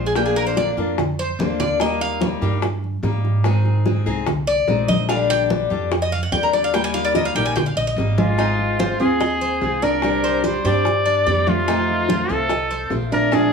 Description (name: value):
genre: latin, Cuban son and guajira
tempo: 146 BPM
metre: 4/4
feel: straight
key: Eb major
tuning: A4 = 441 Hz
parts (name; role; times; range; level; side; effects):
- picked old ladder-braced acoustic guitar; accompaniment; 0.0-13.5 s; C3 to Ab4; -24 LUFS; left 5 dB; none
- Cuban tres; arpeggios; 0.0-13.5 s; D4 to Ab5; -23 LUFS; left 1 dB; none
- upright bass; bass; 0.0-13.5 s; Ab1 to Ab2; -24 LUFS; right 1 dB; none
- bongos; percussion; 0.2-13.5 s; none; -27 LUFS; left 1 dB; none
- congas; percussion; 0.2-13.5 s; none; -27 LUFS; left 1 dB; none
- clear trumpet; melody; 8.2-13.5 s; F4 to D5; -21 LUFS; equal; plate reverb
- flamenco guitar; second line; 8.2-13.5 s; Ab3 to G4; -24 LUFS; right 5 dB; none
room: moderate studio reverb, RT60 0.8 s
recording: studio ambience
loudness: -17 LUFS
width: side -5 dB against mid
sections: 0.0-8.4 A section; 8.4-13.5 B section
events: Cuban tres solo 0.0-8.4; drum fill 1.4-1.8, 8.2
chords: 0.2 Bb; 1.8 Eb; 3.5 Ab; 5.1 Bb6; 6.7 Eb; 8.4 Ab6; 10.0 Csus2; 11.7 F7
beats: | 0.16 0.57 0.98 1.39 | 1.80 2.22 2.63 3.04 | 3.45 3.86 4.27 4.68 | 5.09 5.51 5.92 6.33 | 6.74 7.15 7.56 7.97 | 8.38 8.80 9.21 9.62 | 10.03 10.44 10.85 11.27 | 11.68 12.09 12.50 12.91 | 13.32